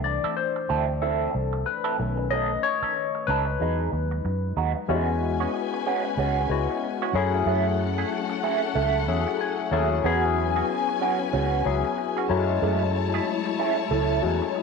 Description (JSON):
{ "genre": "lush 1970s-style soul", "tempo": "93 BPM", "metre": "4/4", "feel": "swing 58% on 16ths", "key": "E major", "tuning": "A4 = 441 Hz", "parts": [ { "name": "barky tine electric piano", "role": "accompaniment", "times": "0.0-14.6 s", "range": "D#3 to A5", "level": "-26 LUFS", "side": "left 8 dB", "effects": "phaser" }, { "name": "vintage muted fingered electric bass", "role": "bass", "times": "0.0-14.4 s", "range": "B1 to F#2", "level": "-27 LUFS", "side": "right 2 dB", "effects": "none" }, { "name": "electric guitar through a small old amp", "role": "riff", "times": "0.1-14.6 s", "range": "G#3 to A4", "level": "-29 LUFS", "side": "right 12 dB", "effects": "wah, harmonic tremolo" }, { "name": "dark symphonic string section", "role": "second line", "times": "4.9-14.6 s", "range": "C#4 to A5", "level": "-30 LUFS", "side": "left 8 dB", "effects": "none" } ], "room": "moderate echo chamber reverb, RT60 1.8 s", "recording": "1960s-style stereo with parts hard left and right", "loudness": "-22 LUFS", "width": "side -4 dB against mid", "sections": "0.0-4.9 A section; 4.9-14.6 B section", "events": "tine electric piano solo 0.0-4.9; tine electric piano fill 8.8-10.0", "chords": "0.0 C6; 2.0 B9; 3.6 Emaj9; 4.9 E69; 7.1 F#m9; 10.0 E69; 12.3 F#m9" }